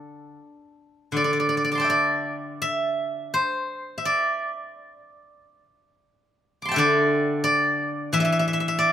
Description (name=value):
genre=chinese traditional, Chinese solo plucked strings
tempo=76-91 BPM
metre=4/4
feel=rubato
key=unclear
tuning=A4 = 440 Hz
part: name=steel-string zither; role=solo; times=0.0-8.9 s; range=D3 to D6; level=-21 LUFS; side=equal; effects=none
room=light reverb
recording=band playing live in one room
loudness=-21 LUFS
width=side -10 dB against mid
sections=0.0-1.1 A section; 1.1-8.9 B section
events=none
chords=none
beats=0.36 | 1.13 1.88 2.62 3.33 | 4.05 4.76 5.45 6.11 | 6.78 7.46 8.14 8.81